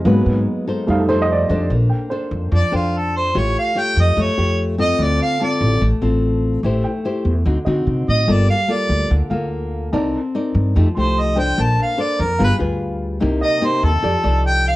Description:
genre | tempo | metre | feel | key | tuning
bossa nova | 146 BPM | 4/4 | straight | Bb major | A4 = 439 Hz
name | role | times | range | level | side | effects
nylon-string guitar | accompaniment | 0.0-14.8 s | C3 to D5 | -21 LUFS | left 2 dB | none
warm baby grand piano | accompaniment | 0.0-14.8 s | Gb3 to C6 | -24 LUFS | right 2 dB | none
upright bass | bass | 0.0-14.8 s | G1 to D3 | -18 LUFS | equal | none
warm harmonica | melody | 2.6-14.8 s | F4 to A5 | -19 LUFS | right 1 dB | none
room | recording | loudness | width
moderate studio reverb, RT60 0.6 s | home recording on cassette | -16 LUFS | side -17 dB against mid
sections
0.0-1.7 A section; 1.7-14.8 A section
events
grand piano solo 0.0-1.7; harmonica solo 1.7-14.8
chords
0.1 Abm7; 0.9 F7; 1.7 Bbmaj9; 3.3 A7alt; 5.0 Dm7; 6.6 Am7; 7.5 D7b9; 8.3 Gm9; 9.9 Cm9; 10.7 F9; 11.6 Bbmaj9; 12.4 G7b9; 13.2 Cm7; 14.0 F13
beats
| 0.05 0.46 0.87 1.28 | 1.70 2.11 2.52 2.93 | 3.34 3.75 4.16 4.58 | 4.99 5.40 5.81 6.22 | 6.63 7.04 7.45 7.87 | 8.28 8.69 9.10 9.51 | 9.92 10.33 10.74 11.15 | 11.56 11.98 12.39 12.80 | 13.21 13.62 14.03 14.44

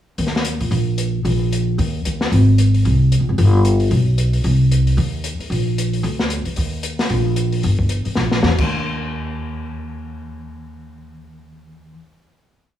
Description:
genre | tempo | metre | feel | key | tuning
jazz, small-group swing and bop | 225 BPM | 4/4 | swing 59% on 8ths | Eb major | A4 = 440 Hz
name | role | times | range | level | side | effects
upright bass | bass | 0.2-11.9 s | G1 to Bb2 | -17 LUFS | equal | none
open jazz drum kit | drums | 0.2-8.6 s | crash cymbal, hi-hat, kick drum, snare drum | -24 LUFS | left 2 dB | none
room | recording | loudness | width
little or no reverb | studio reverb | -16 LUFS | side -11 dB against mid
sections
0.2-8.7 A section; 8.7-10.8 final hit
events
drum fill 8.2-8.7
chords
none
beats
| 0.19 0.45 0.72 0.99 | 1.25 1.52 1.79 2.05 | 2.32 2.59 2.85 3.12 | 3.38 3.65 3.92 4.18 | 4.45 4.71 4.98 5.24 | 5.51 5.78 6.04 6.31 | 6.57 6.84 7.11 7.37 | 7.64 7.91 8.17 8.44 | 8.71 8.97 9.24 9.51 | 9.77 10.04 10.31 10.57

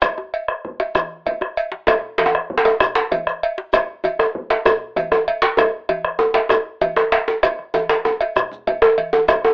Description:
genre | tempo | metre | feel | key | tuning
west african traditional, West African drum ensemble | 129 BPM (dotted quarters) | 12/8 | straight | none | none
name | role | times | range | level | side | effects
bombo | percussion | 0.0-9.4 s | none | -20 LUFS | equal | none
congas | percussion | 0.0-9.4 s | none | -32 LUFS | right 1 dB | none
cowbell | percussion | 0.0-9.4 s | none | -20 LUFS | right 1 dB | none
djembe | percussion | 0.0-9.4 s | none | -26 LUFS | left 1 dB | none
shekere | percussion | 0.0-9.4 s | none | -40 LUFS | left 1 dB | none
djembe | percussion | 1.9-9.5 s | none | -16 LUFS | right 1 dB | none
room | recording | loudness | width
light reverb | home recording on cassette, telephone sound | -16 LUFS | side -26 dB against mid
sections
0.0-1.9 A section; 1.9-9.5 B section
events
drum fill 8.5-9.3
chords
none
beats
| 0.02 0.48 0.95 1.41 | 1.88 2.34 2.80 3.27 | 3.73 4.20 4.66 5.12 | 5.59 6.05 6.51 6.98 | 7.44 7.90 8.37 8.83 | 9.29

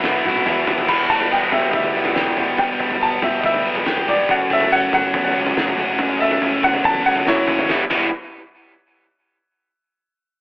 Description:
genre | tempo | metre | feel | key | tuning
indie rock | 141 BPM | 4/4 | straight | E dorian | A4 = 442 Hz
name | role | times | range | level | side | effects
bright upright piano | melody | 0.0-7.7 s | E4 to B5 | -19 LUFS | equal | none
mellow tonewheel organ | sustained chords | 0.0-0.9, 4.3-7.9 s | B3 to B5 | -31 LUFS | equal | none
biting overdriven guitar | riff | 0.0-8.1 s | E2 to G4 | -20 LUFS | left 1 dB | none
growling fingered electric bass | bass | 0.0-8.1 s | E1 to E2 | -30 LUFS | equal | overdrive
cloth-damped thuddy drum kit | drums | 0.0-8.0 s | crash cymbal, kick drum, snare drum, toms | -24 LUFS | equal | none
overdriven electric guitar | riff | 0.2-8.1 s | E2 to F#4 | -25 LUFS | right 1 dB | lush chorus
room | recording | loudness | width
moderate spring reverb, RT60 1.2 s, small room reverb | telephone sound | -15 LUFS | side -29 dB against mid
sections
0.9-7.7 A section; 7.7-9.4 B section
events
drum fill 0.0-0.9, 7.3-7.7; upright piano solo 0.9-7.7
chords
0.0 Bsus4; 0.9 Em; 4.3 F#m; 7.7 Em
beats
0.04 0.47 | 0.89 1.31 1.74 2.17 | 2.59 3.02 3.44 3.87 | 4.29 4.72 5.14 5.57 | 5.99 6.42 6.84 7.27 | 7.69

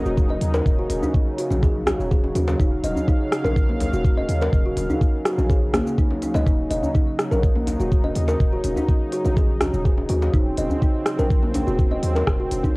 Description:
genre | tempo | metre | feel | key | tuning
afro house | 124 BPM | 4/4 | straight | Eb dorian | A4 = 440 Hz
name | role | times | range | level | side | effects
warm analog pad | sustained chords | 0.0-12.8 s | Db3 to F5 | -29 LUFS | equal | chorus, tremolo, sidechain pumping
warm 808-style bass | bass | 0.0-12.6 s | Eb1 to Eb2 | -24 LUFS | equal | sidechain pumping
kalimba | arpeggios | 0.1-12.7 s | Bb3 to Eb5 | -25 LUFS | equal | sidechain pumping, tape echo
afro-pop drum kit | drums | 0.1-12.7 s | hi-hat, rim click, shaker | -26 LUFS | equal | none
electronic kick drum | drums | 0.2-12.7 s | none | -19 LUFS | equal | none
djembe | percussion | 0.3-12.7 s | none | -29 LUFS | left 1 dB | none
room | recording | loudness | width
light reverb | home recording on cassette | -18 LUFS | side -24 dB against mid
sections
0.0-12.8 A section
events
none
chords
0.0 Ebm7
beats
0.17 | 0.66 1.14 1.63 2.11 | 2.59 3.08 3.56 4.05 | 4.53 5.01 5.50 5.98 | 6.46 6.95 7.43 7.92 | 8.40 8.88 9.37 9.85 | 10.34 10.82 11.30 11.79 | 12.27 12.76

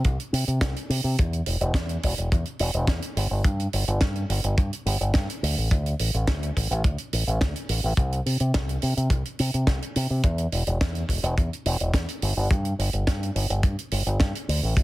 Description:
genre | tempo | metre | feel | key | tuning
nu-disco, nu disco | 106 BPM | 4/4 | straight | unclear | A4 = 440 Hz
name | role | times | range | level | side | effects
fingered electric bass with an envelope filter | bass | 0.0-14.8 s | E1 to C3 | -24 LUFS | equal | none
kick drum | drums | 0.0-14.8 s | none | -23 LUFS | equal | none
tight funk drum kit | drums | 0.0-14.8 s | hi-hat, snare drum | -30 LUFS | right 2 dB | none
room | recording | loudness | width
little or no reverb | heavily compressed radio sound | -22 LUFS | side -17 dB against mid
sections
0.0-14.8 A section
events
none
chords
none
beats
0.05 0.62 | 1.18 1.75 2.32 2.88 | 3.45 4.01 4.58 5.15 | 5.71 6.28 6.84 7.41 | 7.98 8.54 9.11 9.68 | 10.24 10.81 11.37 11.94 | 12.51 13.07 13.64 14.20 | 14.77

